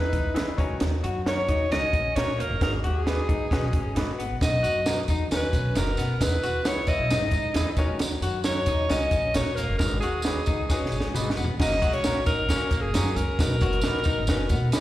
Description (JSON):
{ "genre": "uptempo 1960s-style soul", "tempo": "134 BPM", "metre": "4/4", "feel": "straight", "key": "B major", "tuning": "A4 = 440 Hz", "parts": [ { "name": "edgy alto saxophone", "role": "melody", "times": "0.0-14.8 s", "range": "G#4 to D#5", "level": "-28 LUFS", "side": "equal", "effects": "slapback echo" }, { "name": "clear upright piano", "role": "accompaniment", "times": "0.0-14.8 s", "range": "G#2 to B5", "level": "-33 LUFS", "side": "left 3 dB", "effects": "slapback echo" }, { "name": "electric guitar through a small old amp", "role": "riff", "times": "0.0-14.8 s", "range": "A#3 to F#4", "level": "-33 LUFS", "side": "left 4 dB", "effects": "warbly pitch drift, slapback echo" }, { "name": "upright bass", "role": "bass", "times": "0.0-14.8 s", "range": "E1 to B2", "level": "-29 LUFS", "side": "equal", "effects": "none" }, { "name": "compact cocktail drum kit", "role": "drums", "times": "0.1-14.8 s", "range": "crash cymbal, hi-hat, kick drum, snare drum, toms", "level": "-27 LUFS", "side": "right 1 dB", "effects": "none" }, { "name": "electric guitar through a small old amp", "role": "stabs", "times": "0.3-14.8 s", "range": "B3 to B4", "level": "-36 LUFS", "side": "right 4 dB", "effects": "slapback echo" }, { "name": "tambourine", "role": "percussion", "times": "4.4-14.8 s", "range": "none", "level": "-37 LUFS", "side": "right 2 dB", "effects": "none" } ], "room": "little or no reverb", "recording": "live gig heard through the venue's PA, recital hall reverb", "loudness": "-22 LUFS", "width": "side -14 dB against mid", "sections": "0.0-11.6 A section; 11.6-14.8 B section", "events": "drum fill 10.7-11.6; upright piano fill 14.5", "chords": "0.0 Emaj7; 0.6 D#m7; 2.6 G#m7; 4.4 Bmaj7; 6.2 Emaj7; 7.8 D#m7; 9.8 G#m7; 11.6 F#; 13.4 B", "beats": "0.36 | 0.81 1.26 1.71 2.16 | 2.61 3.06 3.51 3.96 | 4.41 4.86 5.31 5.76 | 6.21 6.66 7.11 7.55 | 8.00 8.45 8.90 9.35 | 9.80 10.25 10.70 11.15 | 11.60 12.04 12.49 12.94 | 13.39 13.84 14.29 14.73" }